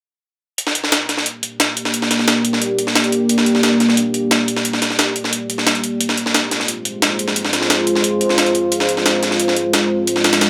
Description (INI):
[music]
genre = dark technical drum and bass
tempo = 177 BPM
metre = 4/4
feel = straight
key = G phrygian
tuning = A4 = 440 Hz
[part]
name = deep dark ambient pad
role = sustained chords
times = 1.8-10.5 s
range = Ab3 to D5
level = -20 LUFS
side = equal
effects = chorus, built-in reverb
[part]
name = breakbeat sampler-style drum kit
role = drums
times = 0.6-10.5 s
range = hi-hat, snare drum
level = -19 LUFS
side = equal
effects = high-pass filter on hats, high-pass filter on snare
[sound]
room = moderate lush hall reverb, RT60 1.7 s, digital ambience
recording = none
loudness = -17 LUFS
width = mono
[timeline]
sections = 0.6-10.5 A section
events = none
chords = 0.6 Gm; 6.0 Fm